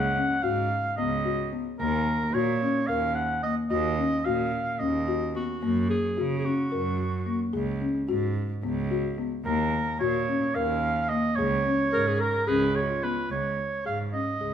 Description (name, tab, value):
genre	contemporary instrumental, chamber music in an uneven meter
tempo	219 BPM (eighths)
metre	7/8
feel	straight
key	Db mixolydian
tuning	A4 = 438 Hz
part	warm oboe	melody	0.0-5.4, 9.5-14.5 s	Bb4 to Gb5	-28 LUFS	right 2 dB	none
part	folk marimba with soft mallets	arpeggios	0.0-14.5 s	Ab3 to Bb4	-28 LUFS	left 5 dB	none
part	rich cello	bass	0.0-14.5 s	Db2 to Db3	-30 LUFS	right 4 dB	none
part	breathy clarinet	second line	5.4-7.5, 11.9-13.3 s	F4 to Bb4	-29 LUFS	equal	none
room	moderate recital hall reverb, RT60 1.4 s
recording	minimal, uncompressed stereo recording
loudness	-24 LUFS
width	side -9 dB against mid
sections	0.0-13.3 A section; 13.3-14.5 B section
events	none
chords	0.0 Db9sus4; 1.8 Ebm7; 5.6 Gb; 7.5 Db7sus4; 9.5 Eb7(no3); 11.4 Db5; 13.3 Dbsus2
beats	0.16 0.44 0.71 0.98 1.25 1.53 | 1.80 2.07 2.35 2.62 2.89 3.17 3.44 | 3.71 3.99 4.26 4.53 4.80 5.08 5.35 | 5.62 5.90 6.17 6.45 6.72 6.99 7.26 | 7.54 7.81 8.09 8.36 8.63 8.91 9.18 | 9.46 9.73 10.01 10.28 10.55 10.83 11.10 | 11.38 11.65 11.93 12.20 12.48 12.75 13.03 | 13.30 13.58 13.85 14.13 14.40